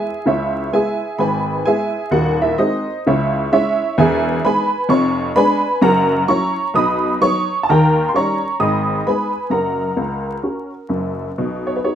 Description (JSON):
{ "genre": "jazz, stride piano", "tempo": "130 BPM", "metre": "4/4", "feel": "swing 63% on 8ths", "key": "B major from 4.0 s", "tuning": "A4 = 440 Hz", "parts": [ { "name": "honky-tonk upright piano", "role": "solo", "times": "0.0-11.9 s", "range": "D#1 to D#6", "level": "-15 LUFS", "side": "equal", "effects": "none" } ], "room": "moderate studio reverb, RT60 0.6 s", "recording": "minimal, uncompressed stereo recording, vinyl crackle", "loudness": "-15 LUFS", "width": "side -9 dB against mid", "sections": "0.0-11.4 A section", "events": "none", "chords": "0.3 C#m7; 2.1 G#7/D#; 3.1 C#m; 4.0 Emaj7; 4.9 Fdim7; 5.8 F#7; 6.8 B; 7.7 D#7; 8.6 G#m; 9.5 F#; 11.4 B" }